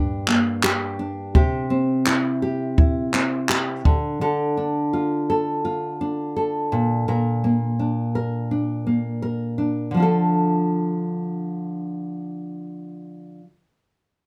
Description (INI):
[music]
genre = acoustic pop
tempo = 84 BPM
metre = 4/4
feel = straight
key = D minor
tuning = A4 = 442 Hz
[part]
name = nylon-string guitar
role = accompaniment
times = 0.0-13.5 s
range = G2 to Bb4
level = -24 LUFS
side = equal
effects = none
[part]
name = compact cocktail drum kit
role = drums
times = 0.3-4.0 s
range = handclaps, kick drum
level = -22 LUFS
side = equal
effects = none
[sound]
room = light reverb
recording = none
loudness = -22 LUFS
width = mono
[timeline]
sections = 0.0-9.9 A section; 9.9-12.8 B section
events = none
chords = 0.0 Gm; 1.3 C; 3.9 Dm; 6.7 Bb; 9.9 Dm